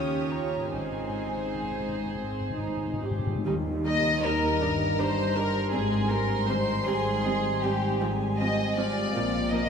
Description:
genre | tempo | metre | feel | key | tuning
classical | 43-56 BPM (dotted quarters) | 6/8 | rubato | Ab major, Eb major from 3.5 s | A4 = 440 Hz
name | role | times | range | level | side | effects
dark chamber violin section | melody | 0.0-9.7 s | F5 to Eb6 | -39 LUFS | equal | none
rich studio violin section | second line | 0.0-9.7 s | G4 to Eb5 | -29 LUFS | equal | none
rich studio viola section | accompaniment | 0.0-9.6 s | F3 to G4 | -34 LUFS | right 3 dB | none
concert harp | arpeggios | 0.0-9.7 s | G2 to F5 | -35 LUFS | left 4 dB | none
dark studio double bass section | bass | 0.0-9.7 s | G1 to Eb2 | -35 LUFS | equal | none
warm studio cello section | bass | 0.0-9.7 s | Eb2 to Bb2 | -34 LUFS | equal | none
timpani | percussion | 0.7-4.6 s | Ab2 to Eb3 | -35 LUFS | left 3 dB | none
mellow French horn section | sustained chords | 3.5-9.7 s | F3 to Eb4 | -32 LUFS | right 1 dB | stereo widening
room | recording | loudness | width
wet cathedral reverb, RT60 6.6 s | in a vast, echoing space | -25 LUFS | side -6 dB against mid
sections
0.0-3.5 A section; 3.5-9.7 B section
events
timpani fill 0.7-3.5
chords
0.0 Eb9; 0.7 Ab; 3.5 Eb; 4.6 Gm; 5.7 Abmaj7; 8.0 Fm/Ab; 9.1 Bb5

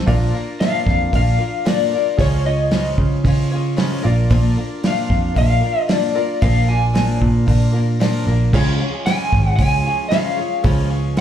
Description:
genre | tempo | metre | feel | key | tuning
folk rock and heartland rock | 113 BPM | 4/4 | straight | unclear | A4 = 440 Hz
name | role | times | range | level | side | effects
picked swing-style acoustic guitar | accompaniment | 0.0-11.2 s | Bb2 to Db5 | -24 LUFS | left 5 dB | slapback echo
warm concert grand piano | accompaniment | 0.0-11.2 s | F4 to F5 | -32 LUFS | right 3 dB | slapback echo
tonewheel organ | sustained chords | 0.0-0.1, 8.5-11.2 s | F3 to Ab4 | -32 LUFS | right 3 dB | slow rotary speaker, chorus vibrato
picked electric bass | bass | 0.0-11.2 s | Ab1 to Db3 | -17 LUFS | right 1 dB | none
loose indie drum kit | drums | 0.1-11.2 s | crash cymbal, hi-hat, kick drum, snare drum | -20 LUFS | right 1 dB | none
electric guitar through a small old amp | melody | 0.6-11.2 s | Db5 to Ab5 | -20 LUFS | left 3 dB | tremolo, slapback echo
room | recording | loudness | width
light reverb | live gig heard through the venue's PA, club ambience | -15 LUFS | side -10 dB against mid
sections
0.1-11.2 A section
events
none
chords
0.1 Bb; 2.2 Db; 4.0 Bb; 8.5 Db

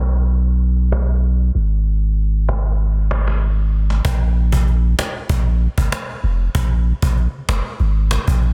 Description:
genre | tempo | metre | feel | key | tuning
dancehall | 96 BPM | 4/4 | straight | unclear | A4 = 440 Hz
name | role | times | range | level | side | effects
punchy sub bass | bass | 0.0-8.5 s | F1 to Cb2 | -18 LUFS | equal | none
cajon | drums | 0.9-8.5 s | none | -26 LUFS | equal | none
room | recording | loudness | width
little or no reverb | dense, heavily limited modern master, low-pass filter | -18 LUFS | mono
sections
0.0-4.0 A section; 4.0-8.5 B section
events
filter sweep 0.0-4.0; kick muted 2.8-4.0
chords
none

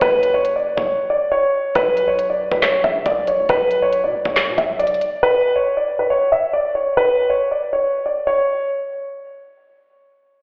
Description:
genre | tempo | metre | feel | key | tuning
hip hop, trap | 138 BPM | 4/4 | half-time | B harmonic minor | A4 = 440 Hz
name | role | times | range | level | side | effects
dark grand piano | melody | 0.0-8.7 s | B4 to E5 | -19 LUFS | equal | tape echo
hard-hitting 808-style bass | bass | 0.0-5.0 s | F#1 to B2 | -32 LUFS | equal | none
trap drum kit | drums | 0.0-5.1 s | handclaps, hi-hat, kick drum, snare drum | -25 LUFS | equal | none
room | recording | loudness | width
moderate plate reverb, RT60 2.1 s | played on a big sound system in a bare room, large studio reverb, telephone sound | -18 LUFS | mono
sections
0.0-1.8 A section; 1.8-8.7 B section; 8.7-10.4 C section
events
drums muted 0.9-1.8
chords
0.0 F#5; 1.8 Bm; 5.2 N.C.

